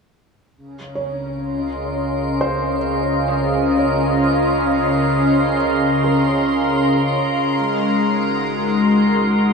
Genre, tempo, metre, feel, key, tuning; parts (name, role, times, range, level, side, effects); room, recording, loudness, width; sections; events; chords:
ambient; 52 BPM; 3/4; straight; Db major; A4 = 440 Hz
warm analog pad; sustained chords; 0.6-9.5 s; Db3 to C6; -17 LUFS; equal; chorus
warm sub bass; bass; 0.6-9.5 s; Ab1 to Db2; -34 LUFS; equal
drifting glass-harmonics texture; texture; 1.6-9.5 s; Bb4 to Bb5; -25 LUFS; right 1 dB; chorus, built-in reverb
felt-muted upright piano; arpeggios; 1.0-9.5 s; Bb4 to Db5; -27 LUFS; right 1 dB; tape echo
wet huge ambient reverb, RT60 8.3 s; small room ambience; -16 LUFS; side -4 dB against mid
0.6-9.5 A section
fade-out on sub bass 0.6-9.5
0.6 Dbmaj7; 7.5 Ab7